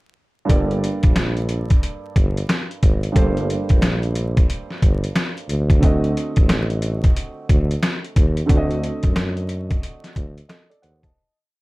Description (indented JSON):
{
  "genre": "hip hop, boom-bap hip-hop",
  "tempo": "90 BPM",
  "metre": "4/4",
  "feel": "swing 62% on 16ths",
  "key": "G harmonic minor",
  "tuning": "A4 = 441 Hz",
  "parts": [
    { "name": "dark concert grand piano", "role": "accompaniment", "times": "0.4-11.4 s", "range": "G2 to A5", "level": "-27 LUFS", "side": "right 2 dB", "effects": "cassette tape, high-pass filter, low-pass filter" },
    { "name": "warm tuba", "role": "bass", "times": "0.5-11.1 s", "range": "G1 to F#2", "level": "-22 LUFS", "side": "equal", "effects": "none" },
    { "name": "trip hop sampler-style drum kit", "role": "drums", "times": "0.5-11.2 s", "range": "hi-hat, kick drum, snare drum", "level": "-17 LUFS", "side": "equal", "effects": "none" }
  ],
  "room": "little or no reverb",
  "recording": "dark, warm production, vinyl crackle",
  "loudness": "-17 LUFS",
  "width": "side -22 dB against mid",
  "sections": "0.5-11.2 verse",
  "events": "fade-out 8.5-11.2",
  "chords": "0.5 Gmadd9; 5.5 D7b9"
}